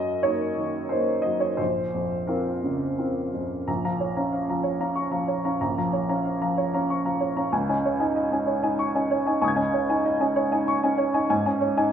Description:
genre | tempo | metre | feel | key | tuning
neoclassical minimalist piano | 94 BPM | 3/4 | rubato | Bb minor | A4 = 441 Hz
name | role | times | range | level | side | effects
clear upright piano | solo | 0.0-11.9 s | Bb1 to Ab6 | -22 LUFS | equal | none
room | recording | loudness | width
wet recital hall reverb, RT60 1.6 s | minimal, uncompressed stereo recording | -22 LUFS | side -8 dB against mid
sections
0.0-3.7 A section; 3.7-11.9 B section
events
none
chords
0.0 Ebm/Gb; 1.6 Bbmadd9; 3.7 Bbm; 7.5 Dbsus2; 11.3 Absus4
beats
0.25 0.91 | 1.59 2.29 2.98 | 3.67 4.32 4.96 | 5.61 6.25 6.89 | 7.52 8.15 8.78 | 9.41 10.04 10.66 | 11.29 11.91

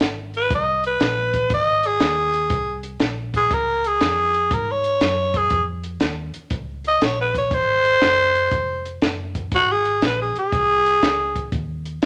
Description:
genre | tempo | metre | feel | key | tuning
electric blues shuffle | 120 BPM | 4/4 | swing 67% on 8ths | Ab mixolydian | A4 = 438 Hz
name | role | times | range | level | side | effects
vintage muted fingered electric bass | bass | 0.0-12.1 s | F1 to Ab2 | -33 LUFS | equal | none
compact cocktail drum kit | drums | 0.0-12.1 s | hi-hat, kick drum, snare drum | -26 LUFS | equal | none
growling tenor saxophone | melody | 0.4-11.5 s | Gb4 to Eb5 | -20 LUFS | equal | none
room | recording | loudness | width
light reverb | none | -20 LUFS | mono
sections
0.0-12.1 A section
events
none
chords
0.0 Ab; 3.5 Db; 7.5 Ab7; 11.5 N.C.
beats
0.00 0.50 1.00 | 1.50 2.00 2.51 3.01 | 3.51 4.01 4.51 5.01 | 5.51 6.01 6.51 7.01 | 7.51 8.01 8.52 9.02 | 9.52 10.02 10.52 11.02 | 11.52 12.02

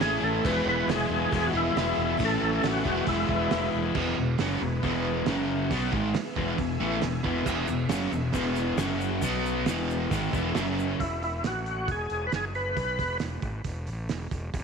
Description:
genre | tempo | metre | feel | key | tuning
classic rock | 136 BPM | 4/4 | straight | E major | A4 = 445 Hz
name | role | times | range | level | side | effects
overdriven tonewheel organ | melody | 0.0-3.7, 11.0-13.2 s | E4 to B4 | -29 LUFS | left 1 dB | slow rotary speaker, chorus vibrato
picked steel-string acoustic guitar | accompaniment | 0.0-4.0 s | E2 to F#4 | -38 LUFS | left 10 dB | none
string machine, full ensemble | sustained chords | 0.0-11.0 s | E3 to F#5 | -38 LUFS | equal | none
distorted electric guitar | riff | 0.0-11.0 s | E2 to E4 | -30 LUFS | left 10 dB | distortion
overdriven semi-hollow guitar | riff | 0.0-11.0 s | E2 to E4 | -30 LUFS | right 11 dB | harmonic tremolo
fuzz fingered electric bass | bass | 0.0-14.6 s | E1 to B1 | -34 LUFS | equal | overdrive
cloth-damped thuddy drum kit | drums | 0.0-14.6 s | crash cymbal, hi-hat, kick drum, snare drum | -33 LUFS | right 5 dB | none
egg shaker | percussion | 7.5-10.9 s | none | -48 LUFS | left 13 dB | none
room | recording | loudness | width
light reverb, small room reverb | 1960s-style stereo with parts hard left and right | -25 LUFS | side -6 dB against mid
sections
0.0-4.0 A section; 4.0-11.0 B section; 11.0-14.6 C section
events
none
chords
0.4 Eadd9; 2.2 A; 2.9 Eadd9; 4.0 E; 5.3 F#5; 5.7 E; 8.8 F#5; 9.2 B5; 9.7 E; 10.6 F#5; 11.0 N.C.; 11.4 F#m/A; 11.9 E; 12.3 F#sus24; 12.8 E5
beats
0.01 | 0.45 0.89 1.32 1.76 | 2.20 2.64 3.08 3.51 | 3.95 4.39 4.83 5.27 | 5.71 6.15 6.59 7.03 | 7.47 7.91 8.35 8.79 | 9.23 9.67 10.11 10.55 | 11.00 11.44 11.88 12.32 | 12.77 13.21 13.65 14.10 | 14.54

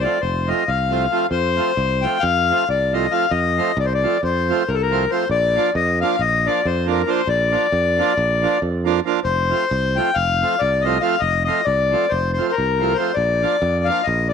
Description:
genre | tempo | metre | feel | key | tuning
balkan folk, Balkan wedding band | 273 BPM (eighths) | 9/8 | straight | F mixolydian | A4 = 439 Hz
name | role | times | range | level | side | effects
accordion | melody | 0.0-14.3 s | A4 to G5 | -19 LUFS | left 6 dB | slapback echo
accordion | accompaniment | 0.0-14.0 s | F3 to F4 | -23 LUFS | right 13 dB | none
modern bright fingered electric bass | bass | 0.0-14.3 s | F1 to F2 | -22 LUFS | right 2 dB | none
room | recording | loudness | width
light reverb, small room ambience | 1960s-style stereo with parts hard left and right | -16 LUFS | side -7 dB against mid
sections
0.0-1.3 A section; 1.3-14.3 A section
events
none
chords
0.0 F; 5.3 Bb; 9.2 F; 13.2 Bb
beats
0.21 0.44 0.66 0.88 1.10 | 1.32 1.54 1.76 1.99 2.21 2.43 2.65 2.87 3.09 | 3.31 3.53 3.75 3.98 4.20 4.42 4.64 4.86 5.08 | 5.30 5.52 5.74 5.96 6.18 6.40 6.62 6.84 7.06 | 7.28 7.50 7.72 7.93 8.15 8.37 8.59 8.81 9.03 | 9.25 9.47 9.69 9.90 10.12 10.34 10.56 10.78 10.99 | 11.21 11.43 11.65 11.86 12.08 12.30 12.52 12.73 12.95 | 13.17 13.38 13.60 13.82 14.04 14.25

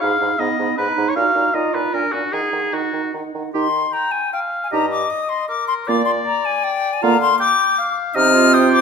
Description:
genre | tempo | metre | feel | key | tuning
quick classical-period movement for wind quintet | 156 BPM | 3/4 | rubato | Eb minor, Eb major from 3.5 s | A4 = 440 Hz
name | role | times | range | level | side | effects
bright silver concert flute | melody | 0.0-8.8 s | Gb5 to F6 | -20 LUFS | left 6 dB | none
warm oboe | second line | 0.0-8.8 s | Gb4 to G5 | -20 LUFS | left 2 dB | none
clear clarinet | accompaniment | 0.0-8.8 s | Cb4 to Ab4 | -24 LUFS | right 12 dB | none
mellow French horn | accompaniment | 0.0-8.8 s | Bb3 to Eb4 | -23 LUFS | right 4 dB | none
mellow bassoon | bass | 0.0-8.8 s | G2 to Eb3 | -25 LUFS | right 3 dB | none
room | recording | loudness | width
moderate recital hall reverb, RT60 1.4 s | none | -16 LUFS | side -6 dB against mid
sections
0.0-3.5 A section; 3.5-8.8 A section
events
none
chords
0.0 Abm; 1.2 Ebm/Bb; 1.9 Bb7; 2.3 Ebm; 3.5 Eb; 4.7 Eb/G; 5.9 Bb; 7.0 Bb/D; 8.2 Cm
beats
| 0.01 0.40 0.77 | 1.16 1.54 1.93 | 2.33 2.73 3.14 | 3.54 3.94 4.33 | 4.72 5.11 5.49 | 5.88 6.26 6.64 | 7.02 7.40 7.78 | 8.15 8.53

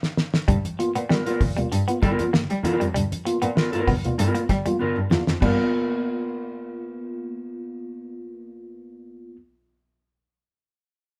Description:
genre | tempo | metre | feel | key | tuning
funk | 97 BPM | 4/4 | straight | unclear | A4 = 441 Hz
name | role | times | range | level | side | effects
cloth-damped thuddy drum kit | drums | 0.0-5.6 s | crash cymbal, hi-hat, kick drum, snare drum | -26 LUFS | equal | none
semi-hollow electric guitar | riff | 0.5-5.6 s | F3 to B3 | -31 LUFS | equal | none
mellow tine electric piano | stabs | 0.5-9.4 s | G2 to F4 | -31 LUFS | equal | phaser
warm cello | bass | 0.5-5.5 s | E2 to G3 | -29 LUFS | equal | none
congas | percussion | 0.5-5.7 s | none | -33 LUFS | equal | none
mellow electric guitar | accompaniment | 1.1-9.4 s | B3 to A#4 | -29 LUFS | equal | none
room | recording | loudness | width
light reverb | band playing live in one room | -23 LUFS | mono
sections
0.5-5.4 A section; 5.4-7.9 B section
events
drum fill 0.0-0.5, 4.8-5.4; band accent 0.0-0.5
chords
0.5 G7#9; 5.4 G7#9 (rootless)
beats
| 0.48 1.10 1.72 2.33 | 2.95 3.57 4.19 4.81 | 5.42 6.04 6.66 7.28

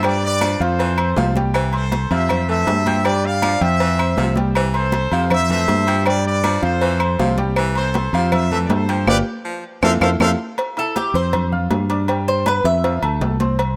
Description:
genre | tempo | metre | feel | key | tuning
latin, salsa | 159 BPM | 4/4 | straight | C major | A4 = 441 Hz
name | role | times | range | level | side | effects
edgy baritone saxophone | second line | 0.0-10.4 s | C3 to F3 | -32 LUFS | equal | none
bright upright piano | accompaniment | 0.0-13.7 s | F3 to G6 | -27 LUFS | equal | none
fingered electric bass | bass | 0.0-13.8 s | G1 to G2 | -22 LUFS | equal | none
agogo bells and timbales | percussion | 0.0-13.8 s | none | -28 LUFS | equal | none
claves | percussion | 0.0-10.3 s | none | -29 LUFS | equal | none
congas | percussion | 0.0-13.8 s | none | -28 LUFS | equal | none
cowbell | percussion | 0.0-13.8 s | none | -29 LUFS | equal | none
bright trumpet section | melody | 0.1-10.3 s | G4 to F5 | -25 LUFS | equal | none
Cuban tres | melody | 10.8-13.0 s | G4 to E5 | -23 LUFS | equal | none
room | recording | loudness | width
light reverb, small room ambience | rough home demo mix | -18 LUFS | mono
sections
0.0-10.6 A section; 10.6-13.8 B section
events
band accent 9.1-10.6; Cuban tres solo 10.6-13.8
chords
0.0 G7; 0.8 C; 2.3 Fmaj7; 3.1 G7; 3.8 F5; 5.3 Fmaj7; 6.1 G7; 6.8 C; 8.3 Fmaj7; 9.1 G7; 9.8 Fmaj7; 10.6 C; 11.3 F5; 12.1 G7; 12.8 F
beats
| 0.04 0.42 0.80 1.17 | 1.55 1.92 2.30 2.68 | 3.05 3.43 3.81 4.18 | 4.56 4.93 5.31 5.69 | 6.06 6.44 6.82 7.19 | 7.57 7.95 8.32 8.70 | 9.07 9.45 9.83 10.21 | 10.58 10.96 11.34 11.71 | 12.09 12.47 12.84 13.22 | 13.60

